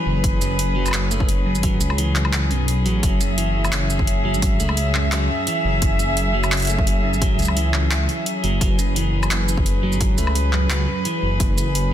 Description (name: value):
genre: half-time drum and bass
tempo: 172 BPM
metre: 4/4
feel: half-time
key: unclear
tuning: A4 = 444 Hz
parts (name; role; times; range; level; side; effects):
- warm chamber cello section; sustained chords; 0.0-11.9 s; F#3 to E5; -24 LUFS; left 1 dB; sidechain pumping
- clean electric guitar; arpeggios; 0.0-11.7 s; F#2 to A3; -27 LUFS; right 3 dB; ping-pong delay
- dark detuned saw bass; bass; 0.1-11.9 s; F#1 to C#2; -21 LUFS; equal; none
- drum and bass drum kit; drums; 0.2-11.8 s; handclaps, hi-hat, shaker, woodblock; -25 LUFS; equal; overdrive, studio ambience
- electronic kick drum; drums; 0.2-11.5 s; none; -21 LUFS; equal; studio ambience
room: light reverb, digital ambience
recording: dense, heavily limited modern master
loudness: -17 LUFS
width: side -11 dB against mid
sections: 0.0-11.9 A section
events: none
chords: 0.0 F#5